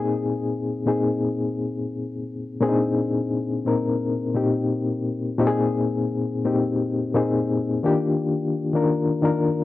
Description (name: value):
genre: R&B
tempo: 86 BPM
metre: 4/4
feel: swing 62% on 16ths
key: unclear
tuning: A4 = 440 Hz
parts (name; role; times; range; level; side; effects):
- reed electric piano; solo; 0.0-9.6 s; Bb2 to Bb4; -21 LUFS; left 2 dB; fast tremolo, cassette tape
room: digital ambience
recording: home recording on cassette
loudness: -21 LUFS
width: side -15 dB against mid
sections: 0.0-5.4 A section; 5.4-9.6 B section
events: none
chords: 0.0 Bb7sus4; 7.8 Ebmaj9